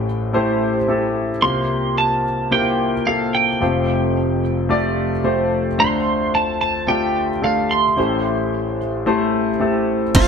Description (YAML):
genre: piano-driven pop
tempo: 110 BPM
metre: 4/4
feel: swing 56% on 16ths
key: unclear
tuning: A4 = 441 Hz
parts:
  - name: twelve-string electric guitar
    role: melody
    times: 0.0-10.3 s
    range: F4 to C6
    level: -20 LUFS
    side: right 3 dB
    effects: lush chorus
  - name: clear concert grand piano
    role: accompaniment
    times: 0.0-10.3 s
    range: F1 to D5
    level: -18 LUFS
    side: left 1 dB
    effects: lush chorus
  - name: glass harmonica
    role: sustained chords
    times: 10.1-10.3 s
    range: A4 to C6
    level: -30 LUFS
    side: right 8 dB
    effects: none
  - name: upright bass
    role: bass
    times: 10.1-10.3 s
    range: F1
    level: -17 LUFS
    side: right 1 dB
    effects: none
  - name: pop drum kit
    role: drums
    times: 10.1-10.3 s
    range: crash cymbal, hi-hat, kick drum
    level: -15 LUFS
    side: right 1 dB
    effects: none
room: moderate plate reverb, RT60 1.5 s, small room reverb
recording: bright 1980s-style digital production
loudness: -16 LUFS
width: side -6 dB against mid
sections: 0.0-10.2 A section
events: none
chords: 0.0 Am7; 1.4 C7sus4; 3.6 Fadd9; 5.8 Dm7; 8.0 Am7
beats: 0.34 0.88 | 1.43 1.97 2.52 3.06 | 3.61 4.15 4.70 5.24 | 5.79 6.33 6.88 7.42 | 7.97 8.52 9.06 9.61 | 10.15